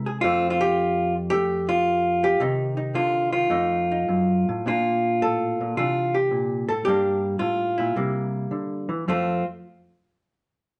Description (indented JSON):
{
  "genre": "solo jazz",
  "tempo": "110 BPM",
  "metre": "4/4",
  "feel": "swing 69% on 8ths, rubato",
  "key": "F major",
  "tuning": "A4 = 442 Hz",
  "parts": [
    { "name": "hollow-body jazz guitar", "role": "solo", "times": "0.0-9.4 s", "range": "F2 to A4", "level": "-23 LUFS", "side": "equal", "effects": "none" }
  ],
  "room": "moderate studio reverb, RT60 0.9 s",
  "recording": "band playing live in one room, nothing above 10.3 kHz",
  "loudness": "-23 LUFS",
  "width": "mono",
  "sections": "0.0-4.7 A section; 4.7-9.1 B section; 9.1-10.8 C section",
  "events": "none",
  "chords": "0.2 F; 2.4 Cm; 3.5 F7b9; 4.7 Bbmaj7; 5.8 C13; 6.9 Gm7; 7.9 C9; 9.1 F"
}